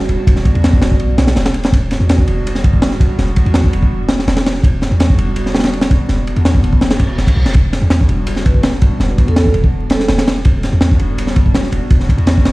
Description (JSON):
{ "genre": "drum and bass, jungle", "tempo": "165 BPM", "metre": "4/4", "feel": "straight", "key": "E minor", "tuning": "A4 = 440 Hz", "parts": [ { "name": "warbly tape-like pad", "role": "sustained chords", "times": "0.0-12.5 s", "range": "G3 to F#4", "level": "-22 LUFS", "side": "equal", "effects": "chorus, built-in reverb, vintage 12-bit sampler grit" }, { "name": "warm 808-style bass", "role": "bass", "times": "0.0-12.5 s", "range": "E1 to E2", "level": "-16 LUFS", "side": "equal", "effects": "none" }, { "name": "crunchy breakbeat drum kit", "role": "drums", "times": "0.0-12.5 s", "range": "kick drum, ride cymbal, snare drum", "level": "-13 LUFS", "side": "equal", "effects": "none" }, { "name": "reverse cymbal", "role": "sound effects", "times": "7.0-7.5 s", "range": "none", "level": "-28 LUFS", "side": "equal", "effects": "none" }, { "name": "vibraphone with medium hard mallets", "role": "melody", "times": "8.5-10.2 s", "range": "A4 to B4", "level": "-24 LUFS", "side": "right 3 dB", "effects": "dub echo" } ], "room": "small room ambience", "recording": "played on a big sound system in a bare room, large studio reverb, vinyl crackle", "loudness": "-11 LUFS", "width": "side -20 dB against mid", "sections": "0.0-12.5 A section", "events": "reverse cymbal 7.0-7.5", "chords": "0.0 Em9" }